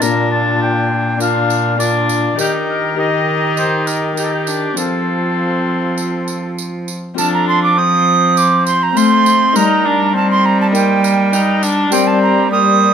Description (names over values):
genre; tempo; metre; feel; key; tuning
classical, renaissance-style consort dance; 101 BPM; 4/4; straight; F mixolydian; A4 = 440 Hz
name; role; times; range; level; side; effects
warm oboe; melody; 0.0-12.9 s; G4 to Bb5; -21 LUFS; left 3 dB; none
alto recorder; second line; 0.0-12.9 s; F4 to Eb6; -17 LUFS; right 6 dB; none
Celtic harp; accompaniment; 0.0-12.9 s; Bb2 to Bb4; -21 LUFS; left 10 dB; none
rich viola; accompaniment; 0.0-12.9 s; Bb3 to Eb4; -20 LUFS; left 2 dB; none
rich cello; bass; 0.0-12.9 s; Bb2 to A3; -18 LUFS; right 1 dB; none
tambourine; percussion; 0.0-12.2 s; none; -26 LUFS; right 7 dB; none
room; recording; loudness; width
light reverb; close, detailed microphones; -12 LUFS; side -8 dB against mid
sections
0.0-7.2 A section; 7.2-12.9 A section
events
none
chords
0.0 Bb; 2.4 Eb; 4.8 F; 9.6 Eb/G; 11.9 Gm